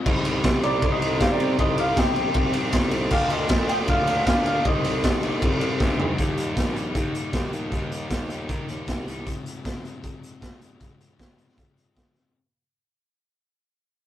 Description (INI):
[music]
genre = indie rock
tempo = 156 BPM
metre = 4/4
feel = straight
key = unclear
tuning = A4 = 441 Hz
[part]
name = fuzz guitar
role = riff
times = 0.0-12.4 s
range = F2 to Eb4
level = -30 LUFS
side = left 3 dB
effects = distortion
[part]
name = combo organ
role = sustained chords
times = 0.1-6.2 s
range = G4 to C6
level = -38 LUFS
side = right 1 dB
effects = none
[part]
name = scooped high-gain guitar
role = riff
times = 0.1-9.3 s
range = C3 to G4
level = -33 LUFS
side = right 2 dB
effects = distortion
[part]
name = fuzz picked electric bass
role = bass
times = 0.1-9.2 s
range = Bb1 to Eb3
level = -29 LUFS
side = equal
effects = overdrive
[part]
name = raw garage drum kit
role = drums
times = 0.1-12.2 s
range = crash cymbal, hi-hat, kick drum, ride cymbal, snare drum, toms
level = -24 LUFS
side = equal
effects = none
[part]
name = electric guitar through a small old amp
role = melody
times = 0.6-5.8 s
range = D5 to G5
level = -26 LUFS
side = equal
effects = none
[part]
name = glockenspiel with rubber mallets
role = second line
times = 0.6-5.8 s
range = Bb5 to Eb6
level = -37 LUFS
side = right 3 dB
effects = none
[sound]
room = moderate booth ambience, RT60 0.2 s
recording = rough rehearsal-room recording, tube saturation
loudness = -21 LUFS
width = side -12 dB against mid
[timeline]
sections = 0.0-6.2 A section; 6.2-12.4 B section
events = drum fill 5.8-6.2; fade-out 6.2-12.4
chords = 0.1 Cm; 3.1 Bbadd9/D; 4.7 Cm7; 6.2 Eb; 9.3 Fm